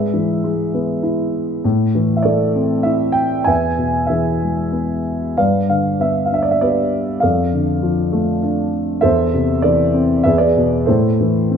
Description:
classical, lyrical solo piano; 98 BPM; 3/4; rubato; A minor; A4 = 440 Hz
dark grand piano; solo; 0.0-11.6 s; E2 to G#5; -15 LUFS; equal
light reverb; minimal, uncompressed stereo recording; -15 LUFS; side -7 dB against mid
0.0-11.6 A section
0.0 E/G#; 1.6 Am; 3.5 E; 5.4 G; 7.2 Dm/F; 9.0 Am/E; 10.3 E; 10.9 Am
0.44 1.04 | 1.64 2.25 2.85 | 3.47 4.09 4.73 | 5.37 6.00 6.62 | 7.23 7.83 8.42 | 9.03 9.64 10.25 | 10.88 11.51

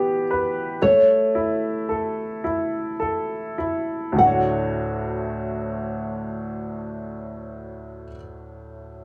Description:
acoustic folk-pop ballad; 32-40 BPM (dotted quarters); 6/8; straight; D major; A4 = 441 Hz
nylon-string guitar; melody; 0.0-8.1 s; C#5 to F#5; -20 LUFS; equal
bright upright piano; accompaniment; 0.0-9.0 s; D2 to C#5; -27 LUFS; equal
moderate large studio reverb, RT60 0.9 s; -23 LUFS; mono
0.0-4.2 A section; 4.2-7.9 B section
slowing down 0.0-4.2
0.0 Em7; 0.8 A; 4.2 Dmaj7
| 0.81 2.42 | 4.19 6.06

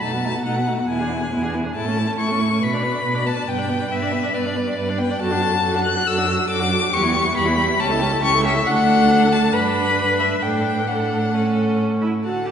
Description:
quick classical-period movement for string quartet; 138 BPM; 4/4; straight; D major; A4 = 440 Hz
rich violin; melody; 0.0-12.5 s; D5 to F#6; -21 LUFS; left 4 dB
dark violin; second line; 0.0-12.5 s; D#4 to A5; -26 LUFS; left 1 dB
rich viola; accompaniment; 0.0-12.5 s; D3 to F#4; -25 LUFS; right 2 dB
warm cello; bass; 0.0-12.5 s; C#2 to G4; -23 LUFS; right 2 dB
wet church reverb, RT60 2.8 s; recorded in a church or concert hall, nothing above 10.5 kHz; -17 LUFS; side -8 dB against mid
0.0-12.2 A section
0.0 B7; 0.9 E7; 1.8 A; 2.6 Bm; 3.5 G; 5.2 D/F#; 6.9 Em; 7.8 A7/C#; 8.7 D; 9.5 G; 10.4 D/A; 11.3 A
| 0.03 0.46 0.89 1.32 | 1.75 2.19 2.61 3.04 | 3.47 3.91 4.34 4.77 | 5.20 5.63 6.06 6.49 | 6.93 7.36 7.79 8.23 | 8.66 9.10 9.54 9.98 | 10.43 10.88 11.34 11.79 | 12.24

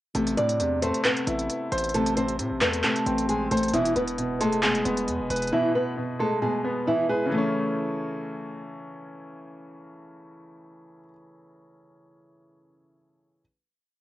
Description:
hip hop, trap; 134 BPM; 4/4; half-time; A4 = 443 Hz
nylon-string guitar; melody; 0.2-8.6 s; E3 to D5; -26 LUFS; equal; cassette tape, tape echo
bright concert grand piano; accompaniment; 0.2-13.4 s; B2 to C5; -29 LUFS; left 1 dB; cassette tape
distorted 808-style bass; bass; 0.2-5.5 s; E1 to A2; -33 LUFS; equal; distortion
trap drum kit; drums; 0.2-5.5 s; handclaps, hi-hat; -28 LUFS; equal; overdrive, cassette tape
little or no reverb; home recording on cassette, nothing above 10.3 kHz; -23 LUFS; side -15 dB against mid
0.2-7.3 verse; 7.3-10.9 final chord
0.2 Am; 3.7 E; 7.3 A
| 0.15 0.60 1.05 1.50 | 1.94 2.39 2.84 3.29 | 3.73 4.18 4.63 5.08 | 5.53 5.97 6.42 6.87 | 7.32 7.76 8.21 8.66 | 9.11 9.55 10.00 10.45

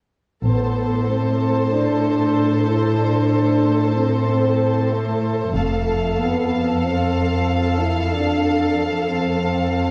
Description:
cinematic; 94 BPM; 4/4; straight; A minor; A4 = 441 Hz
mellow French horn section; sustained chords; 0.4-9.9 s; A3 to E4; -23 LUFS; equal
rich symphonic double bass section; bass; 0.4-1.0, 5.5-6.2 s; F1 to A1; -26 LUFS; equal
warm symphonic cello section; bass; 0.4-9.9 s; F2 to A2; -24 LUFS; equal
warm symphonic violin section; melody; 0.5-9.9 s; A5; -34 LUFS; equal
warm symphonic violin section; second line; 0.5-9.9 s; C5 to F5; -29 LUFS; equal
warm chamber viola section; accompaniment; 0.5-9.9 s; A4; -29 LUFS; equal
wet recital hall reverb, RT60 1.5 s; worn, warbling old tape, cassette tape, warbly pitch drift; -19 LUFS; mono
0.4-9.9 A section
0.4 Am; 5.6 F
| 0.44 1.08 1.72 2.36 | 3.00 3.64 4.28 4.92 | 5.56 6.20 6.84 7.48 | 8.12 8.76 9.40

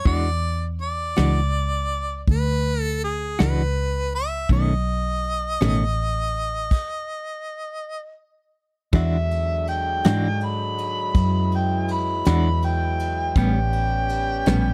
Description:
slow blues; 54 BPM (dotted quarters); 12/8; straight; E mixolydian; A4 = 440 Hz
clear harmonica; melody; 0.0-8.2 s; G#4 to E5; -29 LUFS; equal
vintage muted fingered electric bass; bass; 0.0-14.7 s; A1 to G#2; -26 LUFS; equal
clean electric guitar; accompaniment; 0.1-14.7 s; A2 to F#4; -25 LUFS; equal; tremolo
soft brush drum kit; drums; 0.1-14.6 s; crash cymbal, hi-hat, kick drum, ride cymbal, snare drum; -22 LUFS; equal
mellow harmonica; second line; 8.9-14.7 s; E5 to B5; -28 LUFS; equal; overdrive
mellow horn section; sustained chords; 8.9-14.7 s; D3 to G4; -33 LUFS; equal
little or no reverb; dry, close 1970s-style studio recording; -23 LUFS; mono
0.0-8.9 A section; 8.9-14.7 B section
stop 6.7-8.9; harmonica solo 8.9-14.7
0.1 E9; 4.5 B7; 8.9 E9; 13.4 A9
| 0.07 1.18 2.29 3.39 | 4.50 5.61 6.72 7.83 | 8.93 10.04 11.15 12.25 | 13.36 14.46

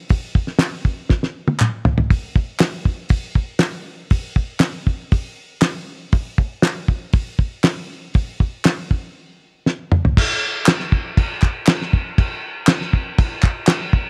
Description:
rock; 119 BPM; 4/4; straight
cloth-damped thuddy drum kit; drums; 0.1-14.0 s; crash cymbal, hi-hat, kick drum, snare drum, toms; -19 LUFS; equal
group handclap; percussion; 0.6-13.8 s; -25 LUFS; equal
studio ambience; -19 LUFS; mono
0.0-10.2 A section; 10.2-14.1 B section
drum fill 1.1-2.1, 9.7-10.2
| 0.10 0.60 1.10 1.60 | 2.10 2.60 3.10 3.60 | 4.11 4.61 5.11 5.62 | 6.12 6.63 7.13 7.64 | 8.14 8.64 9.15 9.65 | 10.16 10.66 11.16 11.66 | 12.16 12.66 13.16 13.66

